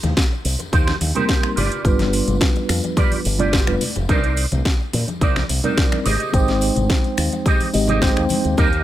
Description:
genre	nu-disco, nu disco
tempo	107 BPM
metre	4/4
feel	straight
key	unclear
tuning	A4 = 440 Hz
part	fingered electric bass with an envelope filter	bass	0.0-8.8 s	F1 to Bb2	-21 LUFS	equal	tube saturation
part	house drum kit	drums	0.0-8.8 s	finger snaps, hi-hat, snare drum	-24 LUFS	equal	none
part	congas and tambourine	percussion	0.0-8.8 s	none	-28 LUFS	left 4 dB	none
part	electronic kick drum	drums	0.2-8.7 s	none	-18 LUFS	equal	none
part	electric guitar with an envelope filter	riff	0.3-8.8 s	Eb4 to Eb5	-25 LUFS	right 4 dB	ensemble chorus, dub echo
part	mellow tine electric piano	accompaniment	1.2-8.7 s	G3 to G5	-22 LUFS	right 1 dB	medium stereo tremolo, dub echo
room	little or no reverb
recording	none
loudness	-16 LUFS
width	side -13 dB against mid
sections	0.0-8.8 A section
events	none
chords	0.0 Eb6; 1.6 G7; 4.1 Cm9; 6.1 Abmaj7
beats	0.17 0.73 1.29 | 1.85 2.41 2.97 3.53 | 4.09 4.66 5.22 5.78 | 6.34 6.90 7.46 8.02 | 8.58

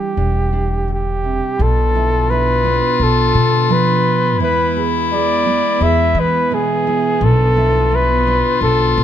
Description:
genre	acoustic folk-pop ballad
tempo	85 BPM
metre	4/4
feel	straight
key	unclear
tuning	A4 = 440 Hz
part	breathy flugelhorn	melody	0.0-9.0 s	G4 to E5	-17 LUFS	equal	plate reverb
part	nylon-string guitar	accompaniment	0.0-9.0 s	B2 to G#4	-22 LUFS	right 7 dB	none
part	upright bass	bass	0.2-9.0 s	E1 to E3	-18 LUFS	equal	none
part	bright clarinet	second line	1.6-9.0 s	E4 to F4	-20 LUFS	left 6 dB	none
part	warm chamber string section	sustained chords	1.6-9.0 s	D3 to B3	-25 LUFS	equal	none
room	light reverb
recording	dark, warm production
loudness	-13 LUFS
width	side -10 dB against mid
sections	0.0-1.6 A section; 1.6-9.0 B section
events	none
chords	0.0 Em7; 1.6 Bdim; 4.4 E; 7.2 Bdim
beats	0.17 0.88 | 1.59 2.30 3.00 3.70 | 4.41 5.11 5.81 6.51 | 7.21 7.91 8.62

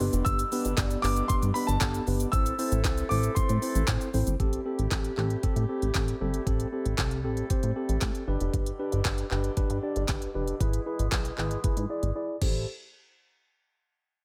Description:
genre	dance-pop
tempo	116 BPM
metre	4/4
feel	straight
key	A minor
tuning	A4 = 440 Hz
part	mellow tine electric piano	accompaniment	0.0-12.7 s	B3 to D5	-34 LUFS	equal	sidechain pumping, low-pass filter
part	warm woodwind section	sustained chords	0.0-12.7 s	B2 to A4	-42 LUFS	equal	sidechain pumping, low-pass filter
part	plucky analog bass	bass	0.0-12.7 s	F1 to A2	-31 LUFS	equal	sidechain pumping
part	smooth R&B drum kit	drums	0.0-12.5 s	crash cymbal, handclaps, hi-hat, kick drum, shaker, snare drum	-32 LUFS	equal	none
part	warm concert grand piano	melody	0.2-4.1 s	A5 to E6	-35 LUFS	equal	delay
room	digital ambience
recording	none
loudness	-28 LUFS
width	mono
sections	0.0-4.4 A section; 4.4-12.7 B section; 12.7-14.2 C section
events	filter sweep 4.4-12.7; drums muted 12.2-12.7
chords	0.0 G; 2.3 Am7; 8.3 G; 10.6 E/G#; 12.4 Am7; 12.7 N.C.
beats	| 0.26 0.78 1.29 1.81 | 2.33 2.85 3.36 3.88 | 4.40 4.92 5.43 5.95 | 6.47 6.98 7.50 8.02 | 8.54 9.05 9.57 10.09 | 10.61 11.12 11.64 12.16

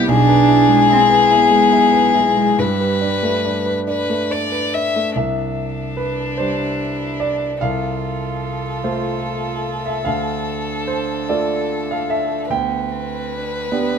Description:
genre	neoclassical piano and strings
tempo	49 BPM (dotted quarters)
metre	6/8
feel	rubato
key	C major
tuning	A4 = 439 Hz
part	rich violin	melody	0.0-14.0 s	D4 to E5	-19 LUFS	left 5 dB	none
part	warm cello	second line	0.0-14.0 s	G3 to F4	-22 LUFS	right 8 dB	none
part	clear concert grand piano	accompaniment	0.0-14.0 s	B1 to G5	-20 LUFS	right 1 dB	none
room	light reverb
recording	minimal, uncompressed stereo recording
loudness	-16 LUFS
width	side -7 dB against mid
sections	0.0-5.2 A section; 5.2-14.0 B section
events	none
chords	0.1 E/B; 2.6 Gadd9; 5.2 Cadd9; 7.6 F/C; 10.1 Dm; 12.5 G/D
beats	| 0.09 1.32 | 2.60 3.88 | 5.16 6.39 | 7.61 8.83 | 10.05 11.28 | 12.49 13.70

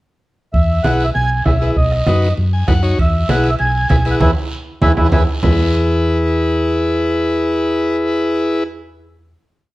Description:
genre	latin, cumbia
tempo	196 BPM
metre	4/4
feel	straight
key	E major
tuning	A4 = 439 Hz
part	mellow accordion	melody	0.5-5.2 s	B4 to G#5	-19 LUFS	right 1 dB	none
part	hollow-body short-scale fingered electric bass	bass	0.5-9.3 s	B1 to F#2	-18 LUFS	equal	none
part	bombo	percussion	0.5-5.5 s	none	-17 LUFS	right 1 dB	none
part	congas	percussion	0.5-5.5 s	none	-22 LUFS	right 1 dB	none
part	guiro	percussion	0.5-5.5 s	none	-33 LUFS	right 3 dB	none
part	overdriven combo organ	accompaniment	0.8-8.6 s	D#4 to G#5	-18 LUFS	left 1 dB	none
part	timbales	percussion	3.0-5.5 s	none	-27 LUFS	right 3 dB	none
room	light reverb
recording	worn, warbling old tape, cassette tape, warbly pitch drift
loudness	-13 LUFS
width	side -18 dB against mid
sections	0.5-5.4 A section; 5.4-7.9 final chord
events	transistor combo organ fill 2.4-3.0; drum fill 4.2-5.4; band accent 4.2-5.4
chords	0.5 E; 1.8 B; 3.0 E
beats	| 0.54 0.85 1.15 1.46 | 1.76 2.07 2.38 2.68 | 2.99 3.29 3.60 3.90 | 4.21 4.52 4.82 5.13 | 5.43 5.74 6.05 6.35 | 6.66 6.96 7.27 7.57

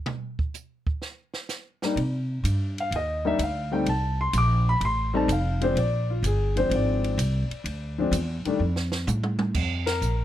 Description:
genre	jazz piano trio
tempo	127 BPM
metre	4/4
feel	swing 69% on 8ths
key	unclear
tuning	A4 = 439 Hz
part	compact cocktail drum kit	drums	0.1-10.2 s	crash cymbal, hi-hat, kick drum, ride cymbal, snare drum, toms	-32 LUFS	right 2 dB	none
part	dark concert grand piano	melody	1.8-10.2 s	Eb3 to D6	-26 LUFS	left 2 dB	plate reverb
part	upright bass	bass	2.0-10.2 s	F1 to C3	-25 LUFS	equal	none
room	light reverb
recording	none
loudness	-23 LUFS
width	side -12 dB against mid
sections	0.0-9.6 A section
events	grand piano solo 0.0-9.6; drum solo 0.0-2.0; drum fill 8.6-9.6; band accent 9.8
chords	0.0 N.C.; 2.0 Cm; 3.9 F; 5.8 Bb7; 8.6 F; 9.6 Bb5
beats	| 0.07 0.55 1.02 1.50 | 1.97 2.44 2.92 3.39 | 3.87 4.34 4.82 5.29 | 5.76 6.24 6.71 7.19 | 7.66 8.13 8.61 9.08 | 9.55 10.03

